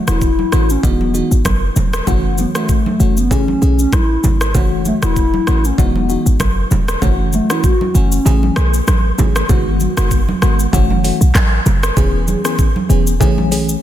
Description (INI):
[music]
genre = afrobeats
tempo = 97 BPM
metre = 4/4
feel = swing 55% on 16ths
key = F# dorian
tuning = A4 = 436 Hz
[part]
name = FM electric piano with auto-pan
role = accompaniment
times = 0.0-13.8 s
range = D#3 to G#4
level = -20 LUFS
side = left 1 dB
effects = phaser
[part]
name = hollow clarinet-like synth lead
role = melody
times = 0.1-8.9 s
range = A3 to F#4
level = -20 LUFS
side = left 1 dB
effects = chorus, tape echo
[part]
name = short 808-style bass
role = bass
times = 0.1-13.8 s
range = E1 to B1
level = -15 LUFS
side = equal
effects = none
[part]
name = afro-pop drum kit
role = drums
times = 0.1-13.8 s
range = handclaps, hi-hat, kick drum, rim click, shaker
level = -18 LUFS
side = equal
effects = soft clipping on snare
[part]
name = congas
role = percussion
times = 0.4-13.5 s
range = none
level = -23 LUFS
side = right 4 dB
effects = none
[sound]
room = light reverb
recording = dense, heavily limited modern master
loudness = -12 LUFS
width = side -12 dB against mid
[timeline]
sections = 0.0-9.5 A section; 9.5-13.8 B section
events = kick muted 8.3-9.5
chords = 0.0 F#m7; 0.8 Emaj9; 2.1 F#m7; 3.3 Amaj7; 4.5 F#m7; 5.8 Emaj9; 7.0 F#m7; 8.3 Amaj7; 9.5 G#m7; 10.7 F#m7; 12.0 E6; 13.2 Amaj7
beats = 0.22 0.83 1.45 | 2.07 2.69 3.31 3.93 | 4.55 5.16 5.78 6.40 | 7.02 7.64 8.26 8.88 | 9.49 10.11 10.73 11.35 | 11.97 12.59 13.21